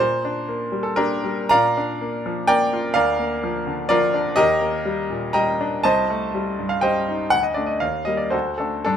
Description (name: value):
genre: classical, romantic character piece for solo piano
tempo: 107-128 BPM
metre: 3/4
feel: rubato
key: unclear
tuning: A4 = 440 Hz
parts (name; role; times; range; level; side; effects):
- bright grand piano; solo; 0.0-9.0 s; C2 to Bb5; -19 LUFS; equal; none
room: light reverb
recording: close, detailed microphones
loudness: -19 LUFS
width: side -8 dB against mid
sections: 0.0-9.0 A section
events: none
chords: 0.0 Gm/Bb; 1.5 Bb; 3.0 Bb/D; 4.4 Ebmaj7; 5.8 Am7b5/C; 7.3 D5; 7.8 Eb; 8.3 D7